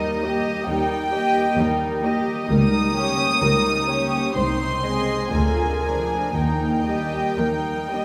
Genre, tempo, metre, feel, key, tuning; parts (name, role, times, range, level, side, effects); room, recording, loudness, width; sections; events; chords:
classical, slow romantic movement for string orchestra; 56-67 BPM; 4/4; rubato; Eb major; A4 = 439 Hz
warm symphonic violin section; melody; 0.0-8.0 s; Eb5 to Eb6; -27 LUFS; equal
warm symphonic violin section; second line; 0.0-8.0 s; G4 to Eb5; -28 LUFS; equal
warm studio viola section; accompaniment; 0.0-8.0 s; D3 to G4; -28 LUFS; equal
warm studio cello section; bass; 0.0-8.0 s; C2 to Eb2; -30 LUFS; equal
dark symphonic double bass section; bass; 2.5-7.2 s; C2 to Eb2; -30 LUFS; equal
wet church reverb, RT60 3.2 s; recorded in a church or concert hall; -22 LUFS; mono
0.0-8.0 A section
0.0 Eb; 2.5 Eb7/Db; 4.4 Ab/C; 5.3 Bb7/D; 6.3 Eb